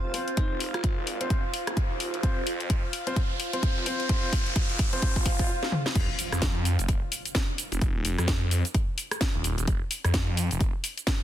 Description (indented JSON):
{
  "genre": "bass house",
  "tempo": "129 BPM",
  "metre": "4/4",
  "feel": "swing 59% on 16ths",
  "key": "F minor",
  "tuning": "A4 = 441 Hz",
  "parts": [
    { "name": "warm grand piano", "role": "stabs", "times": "0.0-5.1 s", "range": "C4 to C5", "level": "-35 LUFS", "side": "left 2 dB", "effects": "sidechain pumping, low-pass filter, tape echo" },
    { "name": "phased detuned saw bass", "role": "bass", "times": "0.0-10.7 s", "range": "Eb1 to F2", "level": "-30 LUFS", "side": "equal", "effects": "phaser, overdrive, sidechain pumping, high-pass filter" },
    { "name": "riser, swell and impact", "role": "sound effects", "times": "0.7-7.8 s", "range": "none", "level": "-36 LUFS", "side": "equal", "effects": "none" },
    { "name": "granular cloud pad", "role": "texture", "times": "0.0-5.5 s", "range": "F4 to F5", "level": "-36 LUFS", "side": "right 2 dB", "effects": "built-in reverb, sidechain pumping" },
    { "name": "house drum kit", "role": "drums", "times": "0.1-11.2 s", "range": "cabasa, crash cymbal, hi-hat, rim click, snare drum, toms", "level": "-31 LUFS", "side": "left 1 dB", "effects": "none" },
    { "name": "bell-like FM electric piano", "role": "melody", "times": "0.4-1.4 s", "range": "Eb4 to F4", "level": "-39 LUFS", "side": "right 2 dB", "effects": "chorus, tape echo" },
    { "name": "electronic kick drum", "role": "drums", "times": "0.4-11.2 s", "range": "none", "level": "-26 LUFS", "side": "equal", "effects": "none" }
  ],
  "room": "little or no reverb",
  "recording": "dense, heavily limited modern master",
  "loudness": "-25 LUFS",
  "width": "side -12 dB against mid",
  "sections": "0.0-6.0 A section; 6.0-11.2 B section",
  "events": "build-up 0.0-6.0; riser 0.7-5.5; drum fill 2.2-5.5, 5.6-6.0; swell 5.0-6.0; break 5.5-6.0; drop 6.0-11.2; impact 6.0-7.8",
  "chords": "0.0 F5; 6.0 N.C."
}